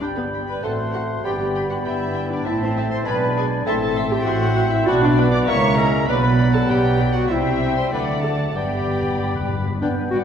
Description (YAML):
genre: quick classical-period movement for symphony orchestra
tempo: 99 BPM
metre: 2/4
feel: straight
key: G major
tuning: A4 = 440 Hz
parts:
  - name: muted chamber violin section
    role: melody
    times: 0.0-10.2 s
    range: B4 to D6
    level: -32 LUFS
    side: left 2 dB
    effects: none
  - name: bright silver concert flute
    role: second line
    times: 0.0-10.2 s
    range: B4 to C6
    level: -31 LUFS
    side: left 3 dB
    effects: none
  - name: mellow clarinet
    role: second line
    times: 0.0-10.2 s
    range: B3 to E5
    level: -30 LUFS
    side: left 2 dB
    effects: none
  - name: muted chamber violin section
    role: second line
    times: 0.0-10.2 s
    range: D5 to C6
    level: -32 LUFS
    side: left 5 dB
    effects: none
  - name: warm oboe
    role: second line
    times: 0.0-10.2 s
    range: B4 to B5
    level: -32 LUFS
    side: equal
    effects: none
  - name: muted chamber viola section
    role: accompaniment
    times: 0.0-10.2 s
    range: B3 to D5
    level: -23 LUFS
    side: equal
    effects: none
  - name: warm bassoon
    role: accompaniment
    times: 0.0-10.2 s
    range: F#3 to D4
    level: -28 LUFS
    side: right 1 dB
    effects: none
  - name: mellow French horn section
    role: sustained chords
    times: 0.0-10.2 s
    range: F#3 to G4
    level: -27 LUFS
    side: left 3 dB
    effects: none
  - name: muted chamber cello section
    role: bass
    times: 0.0-10.2 s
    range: G2 to D3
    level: -26 LUFS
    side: right 3 dB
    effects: none
  - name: muted chamber double bass section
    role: bass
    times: 0.0-10.2 s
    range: G1 to D2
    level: -25 LUFS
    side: right 2 dB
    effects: none
  - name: timpani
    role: percussion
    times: 8.6-9.8 s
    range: G2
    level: -26 LUFS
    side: left 2 dB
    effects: none
room: wet concert hall reverb, RT60 1.9 s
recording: recorded in a church or concert hall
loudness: -18 LUFS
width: side -8 dB against mid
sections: 0.0-9.8 A section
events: timpani fill 8.6-9.8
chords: 0.0 G; 0.6 F#dim/A; 1.2 G; 2.5 Am; 3.1 G#dim/B; 3.7 Am; 4.9 Bm; 5.5 A#dim/C#; 6.1 Bm; 7.3 C; 7.9 D; 8.6 G